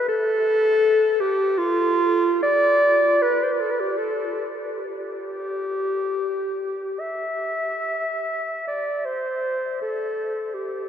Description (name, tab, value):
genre	classical, free, expressive piece for unaccompanied clarinet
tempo	58-84 BPM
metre	3/4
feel	rubato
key	unclear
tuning	A4 = 436 Hz
part	mellow clarinet	solo	0.0-10.9 s	F4 to E5	-20 LUFS	equal	none
room	wet huge ambient reverb, RT60 7.7 s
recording	in a vast, echoing space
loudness	-20 LUFS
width	side -9 dB against mid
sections	0.0-10.9 A section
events	none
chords	none